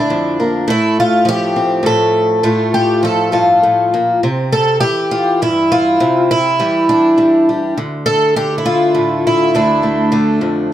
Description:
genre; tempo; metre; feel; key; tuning
folk, solo fingerstyle acoustic guitar; 68 BPM (dotted quarters); 6/8; straight; unclear; A4 = 440 Hz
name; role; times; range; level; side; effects
picked twelve-string acoustic guitar; solo; 0.0-10.7 s; D2 to A4; -11 LUFS; equal; none
room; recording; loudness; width
moderate studio reverb, RT60 0.8 s; none; -11 LUFS; side -12 dB against mid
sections
0.0-10.7 A section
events
none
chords
0.0 Bb; 0.7 F/A; 4.2 C; 7.8 Dm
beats
| 0.68 1.55 | 2.43 3.33 | 4.23 5.12 | 6.00 6.88 | 7.76 8.64 | 9.52 10.41

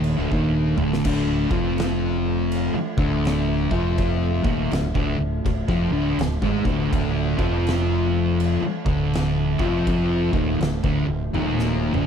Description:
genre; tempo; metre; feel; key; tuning
stoner and doom metal; 82 BPM; 4/4; swing 63% on 8ths; D minor; A4 = 435 Hz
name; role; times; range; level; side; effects
overtone-sweeping drone; sustained chords; 0.0-12.1 s; F3 to E5; -34 LUFS; right 2 dB; chorus, built-in reverb
thick fuzz guitar; riff; 0.0-12.1 s; D2 to G#3; -26 LUFS; left 10 dB; distortion
thick fuzz guitar; riff; 0.0-12.1 s; D2 to G#3; -26 LUFS; right 9 dB; distortion
thick fuzz guitar; riff; 0.0-12.1 s; D2 to G#3; -29 LUFS; left 1 dB; distortion
fingered electric bass; bass; 0.0-12.1 s; D1 to G#1; -26 LUFS; equal; overdrive
oversized low-tuned drum kit; drums; 0.0-12.1 s; crash cymbal, kick drum, snare drum, toms; -28 LUFS; equal; none
room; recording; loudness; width
little or no reverb; none; -20 LUFS; side -7 dB against mid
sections
0.0-1.0 A section; 1.0-12.1 B section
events
drum fill 0.3-1.0, 11.3-12.1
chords
0.0 D5; 1.0 Dm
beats
0.31 | 1.05 1.78 2.52 3.25 | 3.99 4.72 5.46 6.19 | 6.93 7.66 8.40 9.13 | 9.87 10.61 11.34

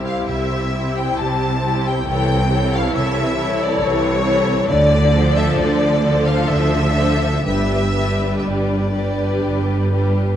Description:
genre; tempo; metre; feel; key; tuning
classical, slow romantic movement for string orchestra; 60-70 BPM; 3/4; rubato; C major; A4 = 440 Hz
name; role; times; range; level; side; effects
rich studio violin section; second line; 0.0-10.4 s; G4 to C#5; -24 LUFS; left 4 dB; none
clear studio viola section; accompaniment; 0.0-10.4 s; E3 to E4; -23 LUFS; right 1 dB; none
rich studio cello section; bass; 0.0-10.3 s; G2 to D3; -21 LUFS; right 1 dB; none
rich studio double bass section; bass; 0.0-10.3 s; G1 to D2; -22 LUFS; right 1 dB; none
clear studio violin section; melody; 0.1-9.9 s; C#5 to A5; -22 LUFS; left 2 dB; none
room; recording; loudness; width
moderate scoring stage reverb, RT60 1.7 s; dark, warm production; -15 LUFS; side -10 dB against mid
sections
0.0-10.4 A section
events
none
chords
0.0 C; 2.1 A/C; 4.7 Dm7; 7.5 G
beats
0.26 1.18 | 2.07 2.94 3.82 | 4.69 5.56 6.49 | 7.46 8.45 9.44

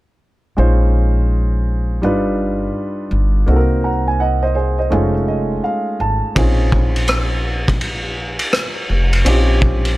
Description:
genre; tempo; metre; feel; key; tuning
hip hop, jazz-hop; 83 BPM; 4/4; swing 64% on 16ths; Bb dorian; A4 = 441 Hz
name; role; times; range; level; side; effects
warm upright piano; accompaniment; 0.6-10.0 s; G3 to Bb5; -19 LUFS; right 1 dB; none
upright bass; bass; 0.6-10.0 s; F1 to C2; -16 LUFS; equal; none
vintage drum kit; drums; 6.4-10.0 s; hi-hat, kick drum, ride cymbal, rim click; -18 LUFS; equal; none
room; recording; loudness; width
little or no reverb; none; -14 LUFS; side -18 dB against mid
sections
0.6-10.0 A section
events
upright piano fill 4.9-6.4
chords
0.6 Bbm11; 2.0 G7b13; 3.5 Cm7b5; 4.9 F7alt; 6.4 Bbm11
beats
| 0.58 1.31 2.03 2.75 | 3.48 4.20 4.92 5.64 | 6.37 7.09 7.81 8.54 | 9.26

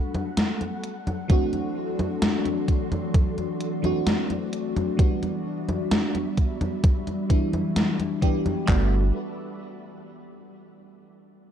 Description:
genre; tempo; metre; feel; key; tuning
vaporwave; 65 BPM; 4/4; straight; G major; A4 = 438 Hz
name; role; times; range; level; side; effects
FM electric piano with soft pad layer; accompaniment; 0.0-9.0 s; E3 to G4; -28 LUFS; equal; phaser, wide subtle chorus, tape echo
soft string machine; sustained chords; 0.0-9.1 s; F#3 to C6; -34 LUFS; right 1 dB; ensemble chorus
gated 80s digital drum machine; drums; 0.1-8.6 s; congas, hi-hat, snare drum; -27 LUFS; left 1 dB; gated reverb, gated reverb snare, overdrive
gated 80s digital drum machine; drums; 1.3-8.9 s; handclaps, kick drum; -20 LUFS; equal; gated reverb, overdrive
chorused synth bass; bass; 8.7-9.1 s; G1; -22 LUFS; equal; tube saturation
room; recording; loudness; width
little or no reverb; dark, warm production; -22 LUFS; side -9 dB against mid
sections
0.0-8.7 A section; 8.7-11.5 B section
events
filter sweep on string machine 0.0-8.7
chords
0.0 Gmaj9; 0.8 D7; 5.0 Em7; 8.7 Gmaj9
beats
0.38 | 1.30 2.22 3.14 4.07 | 4.99 5.91 6.84 7.76 | 8.68

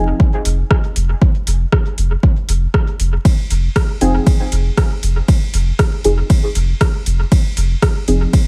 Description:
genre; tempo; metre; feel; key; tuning
dub techno; 118 BPM; 4/4; swing 54% on 16ths; F minor; A4 = 439 Hz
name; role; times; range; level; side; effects
deep mellow chord stab; stabs; 0.0-0.2, 4.0-8.4 s; F3 to Ab4; -22 LUFS; equal; chorus, phaser, sidechain pumping, dub echo
soft dub sub bass; bass; 0.0-8.3 s; F1; -18 LUFS; equal; sidechain pumping
electronic kick drum; drums; 0.2-8.4 s; none; -15 LUFS; equal; overdrive
deep house drum kit; drums; 0.5-8.4 s; hi-hat, ride cymbal, rim click; -26 LUFS; equal; overdrive, dub echo
room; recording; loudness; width
digital ambience; echo-heavy mix, vinyl crackle; -16 LUFS; mono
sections
0.0-8.5 A section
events
filter sweep on synth stab 0.0-8.5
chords
0.0 Fm7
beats
0.20 0.71 | 1.22 1.72 2.23 2.74 | 3.25 3.76 4.27 4.77 | 5.28 5.79 6.30 6.81 | 7.32 7.83 8.33

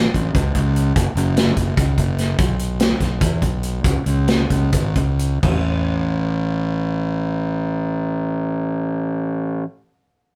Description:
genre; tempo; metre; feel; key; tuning
math rock and midwest emo; 250-295 BPM (eighths); 7/8; straight; unclear; A4 = 439 Hz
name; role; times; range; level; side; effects
fuzz fingered electric bass; bass; 0.0-9.6 s; F#1 to E2; -22 LUFS; equal; overdrive
modern studio drum kit; drums; 0.1-5.5 s; crash cymbal, hi-hat, kick drum, snare drum, toms; -22 LUFS; equal; none
room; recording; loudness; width
light reverb; rough rehearsal-room recording; -20 LUFS; mono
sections
0.0-5.4 A section; 5.4-8.8 B section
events
slowing down 2.4-5.4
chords
none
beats
0.14 0.34 0.55 0.75 | 0.95 1.16 1.36 1.57 1.77 1.98 2.18 | 2.38 2.59 2.79 3.00 3.21 3.42 3.63 | 3.84 4.06 4.28 4.50 4.73 4.96 5.19 | 5.43 5.67 5.91 6.15 6.39 6.63 6.87 | 7.11 7.35 7.59 7.83 8.07 8.31 8.54

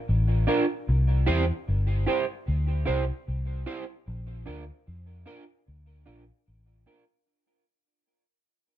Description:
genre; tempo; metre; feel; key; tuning
roots reggae; 75 BPM; 4/4; swing 59% on 16ths; unclear; A4 = 441 Hz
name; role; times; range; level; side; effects
vintage muted fingered electric bass; bass; 0.1-6.8 s; G1 to F2; -25 LUFS; left 1 dB; none
electric guitar at the edge of break-up; accompaniment; 0.5-7.0 s; D4 to C5; -29 LUFS; right 4 dB; analog chorus, tape echo
room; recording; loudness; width
light reverb; none; -23 LUFS; side -12 dB against mid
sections
0.0-7.3 A section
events
fade-out 0.0-7.3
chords
0.0 Bb; 0.9 C; 4.1 Bb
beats
0.08 | 0.88 1.67 2.47 3.27 | 4.07 4.87 5.67 6.46

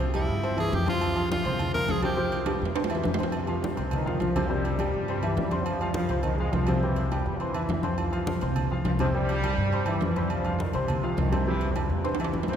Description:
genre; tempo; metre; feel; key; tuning
latin, salsa; 207 BPM; 4/4; straight; unclear; A4 = 441 Hz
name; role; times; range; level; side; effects
clear upright piano; accompaniment; 0.0-12.6 s; C3 to C6; -30 LUFS; left 1 dB; none
upright bass; bass; 0.0-12.6 s; C2 to G2; -29 LUFS; equal; none
congas; percussion; 0.0-12.6 s; none; -32 LUFS; left 2 dB; none
timbales and agogo bells; percussion; 0.1-12.6 s; none; -34 LUFS; right 5 dB; none
edgy tenor saxophone; melody; 0.2-2.4 s; E4 to Bb4; -32 LUFS; equal; none
brilliant trombone section; second line; 3.3-12.6 s; Bb2 to Ab3; -32 LUFS; right 1 dB; none
room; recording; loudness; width
wet cathedral reverb, RT60 6.7 s; recorded in a church or concert hall; -24 LUFS; side -8 dB against mid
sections
0.0-3.3 A section; 3.3-12.6 B section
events
tenor saxophone solo 0.0-3.3; drum fill 2.5-3.3, 12.1-12.6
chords
0.0 C; 1.0 F5; 2.2 C; 3.3 F5; 4.5 C; 5.7 F5; 6.8 C; 8.0 F5; 9.1 C; 10.3 F5; 11.5 C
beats
0.15 0.44 0.73 | 1.02 1.31 1.60 1.89 | 2.18 2.47 2.76 3.05 | 3.34 3.63 3.92 4.21 | 4.50 4.79 5.08 5.37 | 5.66 5.95 6.25 6.54 | 6.83 7.12 7.41 7.70 | 7.99 8.28 8.57 8.86 | 9.15 9.44 9.73 10.02 | 10.31 10.60 10.89 11.18 | 11.47 11.76 12.05 12.34

